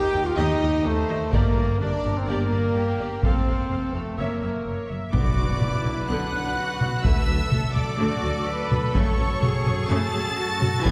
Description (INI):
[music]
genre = cinematic, epic orchestral film score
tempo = 126 BPM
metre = 4/4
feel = straight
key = B dorian from 5.1 s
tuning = A4 = 440 Hz
[part]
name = warm symphonic violin section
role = melody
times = 0.0-10.9 s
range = A4 to A6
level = -36 LUFS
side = equal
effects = none
[part]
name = rich symphonic violin section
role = second line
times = 0.0-10.9 s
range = G4 to A5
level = -37 LUFS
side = equal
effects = none
[part]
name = mellow French horn section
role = sustained chords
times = 0.0-10.9 s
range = E3 to G#4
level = -32 LUFS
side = equal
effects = none
[part]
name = clear trumpet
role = stabs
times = 0.0-10.9 s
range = A3 to B4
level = -34 LUFS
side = equal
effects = none
[part]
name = warm symphonic viola section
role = accompaniment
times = 0.1-10.9 s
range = C#3 to F5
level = -35 LUFS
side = equal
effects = none
[part]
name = rich symphonic cello section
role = bass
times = 0.1-10.9 s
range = Eb2 to B4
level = -33 LUFS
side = equal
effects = none
[part]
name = warm symphonic double bass section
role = bass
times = 0.1-10.9 s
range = F1 to F#2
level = -32 LUFS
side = equal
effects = none
[part]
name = solo taiko drums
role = drums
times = 1.3-10.9 s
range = none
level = -27 LUFS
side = equal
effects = none
[part]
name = timpani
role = percussion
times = 5.1-5.8 s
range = B2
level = -32 LUFS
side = equal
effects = none
[part]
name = impact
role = sound effects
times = 5.1-7.0 s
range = none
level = -37 LUFS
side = equal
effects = none
[sound]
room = wet concert hall reverb, RT60 2.3 s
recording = heard from further back in the room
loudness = -24 LUFS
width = mono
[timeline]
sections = 0.0-5.1 A section; 5.1-10.9 B section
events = impact 5.1-7.0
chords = 0.0 Eb; 1.3 Gm; 3.2 F; 4.2 F#7; 5.1 Bm; 7.0 D; 8.9 F#m